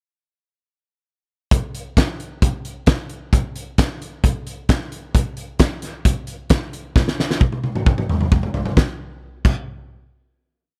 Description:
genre	rock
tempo	132 BPM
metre	4/4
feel	straight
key	none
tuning	none
part	loose indie drum kit	drums	1.5-9.6 s	crash cymbal, hi-hat, kick drum, snare drum, toms	-19 LUFS	equal	none
room	little or no reverb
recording	none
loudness	-20 LUFS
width	mono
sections	1.5-8.8 pre-chorus; 8.8-10.6 final hit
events	drum fill 7.0-8.8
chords	none

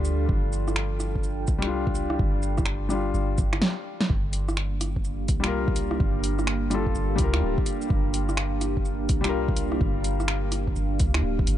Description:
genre	future garage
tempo	126 BPM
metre	4/4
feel	swing 64% on 16ths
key	G minor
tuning	A4 = 439 Hz
part	felt-muted upright piano	accompaniment	0.0-10.5 s	G3 to Bb4	-31 LUFS	left 5 dB	vintage 12-bit sampler grit, sidechain pumping, digital delay
part	deep dark ambient pad	sustained chords	0.0-11.6 s	Bb3 to G5	-32 LUFS	right 2 dB	chorus, built-in reverb, sidechain pumping
part	soft 808-style bass	bass	0.0-11.6 s	D1 to D2	-27 LUFS	equal	none
part	deep house drum kit	drums	0.0-11.6 s	finger snaps, hi-hat, rim click, shaker, snare drum	-29 LUFS	right 1 dB	overdrive
part	electronic kick drum	drums	0.3-11.5 s	none	-26 LUFS	equal	overdrive
room	little or no reverb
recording	dark, warm production, nothing above 10.8 kHz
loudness	-23 LUFS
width	side -12 dB against mid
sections	0.0-4.1 A section; 4.1-11.6 B section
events	drum fill 3.6-4.1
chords	0.0 Dm/G; 4.1 Gm7

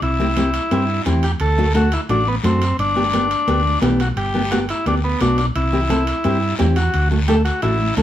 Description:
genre	latin, cumbia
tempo	174 BPM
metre	4/4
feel	straight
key	G major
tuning	A4 = 440 Hz
part	combo organ	melody	0.0-7.9 s	B3 to A4	-21 LUFS	left 1 dB	none
part	hollow-body short-scale fingered electric bass	bass	0.0-8.0 s	G1 to G2	-20 LUFS	equal	none
part	congas	percussion	0.0-8.0 s	none	-28 LUFS	right 3 dB	none
part	guiro	percussion	0.0-8.0 s	none	-33 LUFS	left 4 dB	none
part	timbales	percussion	0.0-8.0 s	none	-33 LUFS	right 4 dB	none
part	nylon-string guitar	accompaniment	0.2-8.0 s	A3 to A4	-21 LUFS	left 1 dB	none
room	moderate studio reverb, RT60 0.7 s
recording	band playing live in one room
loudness	-16 LUFS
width	side -11 dB against mid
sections	0.0-8.0 A section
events	none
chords	0.0 C; 1.4 D7; 2.8 G; 5.6 C; 6.9 D

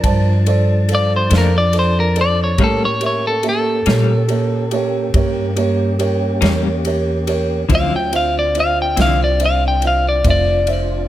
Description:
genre	slow blues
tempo	47 BPM (dotted quarters)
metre	12/8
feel	straight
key	D minor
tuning	A4 = 440 Hz
part	clean electric guitar	melody	0.0-10.7 s	A4 to G5	-18 LUFS	left 1 dB	none
part	dark upright piano	accompaniment	0.0-11.0 s	Bb3 to A5	-22 LUFS	right 5 dB	none
part	tonewheel organ	sustained chords	0.0-11.1 s	F3 to A5	-26 LUFS	left 2 dB	chorus vibrato, slow rotary speaker
part	upright bass	bass	0.0-11.1 s	F1 to Bb2	-18 LUFS	equal	none
part	natural country drum kit	drums	0.0-10.9 s	kick drum, ride cymbal, snare drum	-23 LUFS	equal	none
part	clean electric guitar	accompaniment	1.3-9.2 s	A2 to E4	-20 LUFS	left 5 dB	tremolo
room	light reverb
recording	none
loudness	-14 LUFS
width	side -13 dB against mid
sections	0.0-11.1 A section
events	clean electric guitar solo 0.0-11.1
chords	0.0 Bbmaj7; 2.6 A7b9; 7.7 Dm9

